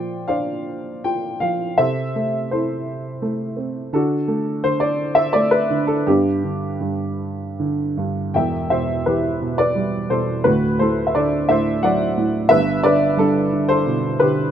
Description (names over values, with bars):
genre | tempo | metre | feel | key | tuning
classical, lyrical solo piano | 76-89 BPM | 3/4 | rubato | G major | A4 = 440 Hz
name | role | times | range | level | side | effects
dark upright piano | solo | 0.0-14.5 s | D1 to G5 | -18 LUFS | equal | none
room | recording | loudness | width
light reverb | close, detailed microphones | -17 LUFS | side -9 dB against mid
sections
0.0-8.3 A section; 8.3-14.5 B section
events
none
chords
0.0 Bbadd9; 1.8 Am/C; 3.9 D; 6.1 G; 8.3 Em; 10.4 D; 12.5 G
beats
0.28 1.05 | 1.79 2.52 3.24 | 3.94 4.65 5.36 | 6.08 6.82 7.59 | 8.35 9.06 9.76 | 10.45 11.15 11.83 | 12.51 13.19 13.87